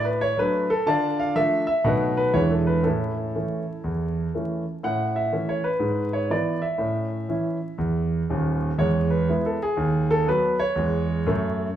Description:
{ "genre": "jazz, stride piano", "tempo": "121 BPM", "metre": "4/4", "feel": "swing 65% on 8ths", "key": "A major", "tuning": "A4 = 440 Hz", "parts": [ { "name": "clear concert grand piano", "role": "solo", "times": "0.0-11.8 s", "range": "D#1 to A5", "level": "-21 LUFS", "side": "right 1 dB", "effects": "none" } ], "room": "wet large studio reverb, RT60 1.2 s", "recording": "band playing live in one room, vinyl crackle", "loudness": "-21 LUFS", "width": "side -10 dB against mid", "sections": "0.0-4.8 A section; 4.8-11.8 B section", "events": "none", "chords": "0.0 D; 0.9 Dm; 1.9 B7; 2.4 E7; 2.9 A; 5.8 E/G#; 6.8 A; 8.8 E; 9.8 B/D#; 10.8 E" }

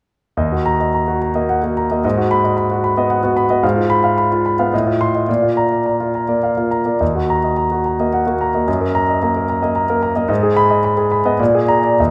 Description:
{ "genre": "classical, virtuoso piano study", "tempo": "98-114 BPM", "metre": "3/4", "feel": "rubato", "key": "Eb minor", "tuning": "A4 = 441 Hz", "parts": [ { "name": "warm concert grand piano", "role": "solo", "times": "0.4-12.1 s", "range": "Eb2 to C6", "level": "-16 LUFS", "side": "equal", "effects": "none" } ], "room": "moderate recital hall reverb, RT60 1.3 s", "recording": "none", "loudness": "-17 LUFS", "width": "mono", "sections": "0.4-12.1 A section", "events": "none", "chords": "0.4 Ebm; 2.0 Abm7; 3.6 Fdim/Ab; 4.7 F7/A; 5.3 Bb; 7.0 Ebm; 8.7 Ebm/Gb; 10.3 Abm; 11.4 Bb7" }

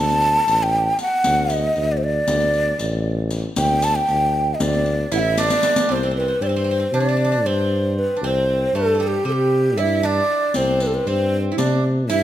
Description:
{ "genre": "Turkish makam ensemble", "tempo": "232 BPM (eighths)", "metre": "9/8", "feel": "straight", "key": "D makam hicaz, C makam rast from 5.9 s", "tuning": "A4 = 441 Hz", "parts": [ { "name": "breathy mellow ney", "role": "melody", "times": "0.0-12.2 s", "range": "G4 to A5", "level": "-19 LUFS", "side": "right 1 dB", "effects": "none" }, { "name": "warm tuba", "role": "bass", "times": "0.0-12.2 s", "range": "A1 to C3", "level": "-22 LUFS", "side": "left 1 dB", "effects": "none" }, { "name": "riq", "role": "percussion", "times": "0.1-5.9, 10.5-12.2 s", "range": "none", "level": "-27 LUFS", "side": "left 2 dB", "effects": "none" }, { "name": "Greek bouzouki", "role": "second line", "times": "5.1-12.2 s", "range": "G3 to E4", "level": "-25 LUFS", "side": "right 4 dB", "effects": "none" } ], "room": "moderate scoring stage reverb, RT60 1.8 s", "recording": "close, detailed microphones", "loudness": "-17 LUFS", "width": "side -12 dB against mid", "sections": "0.0-5.9 A section; 5.9-12.2 B section", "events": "drum fill 5.4-5.9", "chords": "none" }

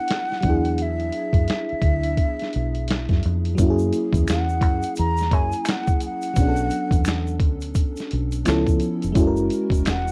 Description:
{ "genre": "R&B, neo-soul", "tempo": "86 BPM", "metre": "4/4", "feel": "swing 61% on 16ths", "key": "unclear", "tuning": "A4 = 440 Hz", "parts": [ { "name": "breathy concert flute", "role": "melody", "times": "0.0-10.1 s", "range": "E5 to A#5", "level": "-30 LUFS", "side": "equal", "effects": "plate reverb" }, { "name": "FM electric piano with soft pad layer", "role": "accompaniment", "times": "0.0-10.1 s", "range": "E#3 to A#4", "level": "-27 LUFS", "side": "equal", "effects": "chorus, tremolo, cassette tape, plate reverb" }, { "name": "boom bap sampler-style drum kit", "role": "drums", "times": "0.1-10.1 s", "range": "finger snaps, hi-hat, kick drum, snare drum", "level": "-24 LUFS", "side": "equal", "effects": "cassette tape" }, { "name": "deep dub fingered electric bass", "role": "bass", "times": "0.4-10.1 s", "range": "E1 to F#2", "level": "-26 LUFS", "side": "equal", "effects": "none" }, { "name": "egg shaker and finger snaps", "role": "percussion", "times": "3.6-10.1 s", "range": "none", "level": "-38 LUFS", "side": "equal", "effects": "none" } ], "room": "light reverb", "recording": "home recording on cassette", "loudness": "-22 LUFS", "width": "mono", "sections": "0.0-3.6 A section; 3.6-10.1 B section", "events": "none", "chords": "0.4 E9; 3.6 F#7; 6.4 Bm7; 8.5 C#7alt; 9.2 F#7" }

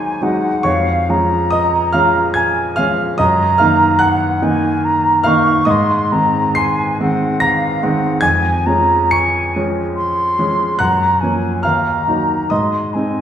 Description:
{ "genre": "classical, romantic duo for flute and grand piano", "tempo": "71 BPM", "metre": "3/4", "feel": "uneven beats, rubato", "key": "Db major", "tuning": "A4 = 440 Hz", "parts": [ { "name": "silver concert flute", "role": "melody", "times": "0.0-13.2 s", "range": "F5 to Db6", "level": "-17 LUFS", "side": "equal", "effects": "none" }, { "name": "bright grand piano", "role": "accompaniment", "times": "0.0-13.2 s", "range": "Eb2 to Db7", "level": "-15 LUFS", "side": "right 1 dB", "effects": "none" } ], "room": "wet recital hall reverb, RT60 1.7 s", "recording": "heard from further back in the room", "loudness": "-13 LUFS", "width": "side -9 dB against mid", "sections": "0.0-13.2 A section", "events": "none", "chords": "0.0 Ab7/Eb; 0.7 Db/F; 3.2 Ebm/Gb; 5.7 Ab; 8.2 Db/F; 10.8 Gbmaj7; 11.6 Ebm; 12.5 Ab" }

